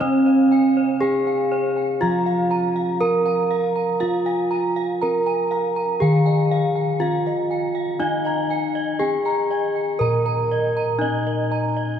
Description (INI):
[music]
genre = Javanese gamelan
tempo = 60 BPM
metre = 4/4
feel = straight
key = Bb slendro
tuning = A4 = 440 Hz
[part]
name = gamelan-type bronze metallophone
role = melody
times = 0.0-12.0 s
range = C4+40c to Bb4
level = -21 LUFS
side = right 1 dB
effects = none
[part]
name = gamelan-type bossed gongs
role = arpeggios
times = 0.0-11.8 s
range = Bb4 to Bb5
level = -28 LUFS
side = left 5 dB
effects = none
[part]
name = gamelan-type bronze metallophone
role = arpeggios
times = 0.0-12.0 s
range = C5+40c to Bb5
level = -28 LUFS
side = right 4 dB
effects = none
[part]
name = gamelan-type bossed gongs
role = bass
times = 0.0-12.0 s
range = Bb2 to F4+20c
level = -24 LUFS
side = equal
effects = none
[sound]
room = wet cathedral reverb, RT60 6.6 s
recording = recorded in a church or concert hall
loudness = -18 LUFS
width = side -8 dB against mid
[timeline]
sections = 0.0-12.0 A section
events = none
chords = none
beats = | 0.01 1.01 2.01 3.01 | 4.01 5.01 6.01 7.01 | 8.01 9.01 10.01 11.01